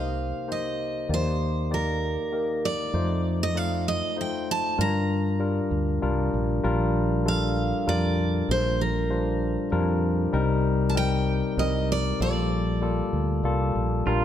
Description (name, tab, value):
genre	acoustic folk-pop ballad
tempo	97 BPM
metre	3/4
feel	straight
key	Bb major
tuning	A4 = 439 Hz
part	picked steel-string acoustic guitar	melody	0.0-13.7 s	Bb4 to Bb5	-29 LUFS	right 2 dB	none
part	barky tine electric piano	accompaniment	0.0-14.2 s	F1 to D5	-27 LUFS	left 3 dB	none
part	mellow fretless electric bass	bass	0.0-14.2 s	Bb1 to G2	-26 LUFS	right 1 dB	none
part	pedal steel guitar	second line	14.1-14.2 s	F4	-26 LUFS	right 5 dB	none
room	moderate scoring stage reverb, RT60 1.6 s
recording	none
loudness	-23 LUFS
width	side -10 dB against mid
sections	0.0-6.6 A section; 6.6-14.2 B section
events	none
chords	0.0 Cm7; 1.1 Ebmaj7; 2.9 F7; 4.8 Gm7; 6.6 Bb6; 10.3 Cm7; 12.2 Gm9/Bb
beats	0.48 | 1.09 1.71 2.32 | 2.94 3.55 4.17 | 4.79 5.40 6.02 | 6.64 7.26 7.88 | 8.50 9.11 9.73 | 10.34 10.96 11.58 | 12.20 12.82 13.44 | 14.06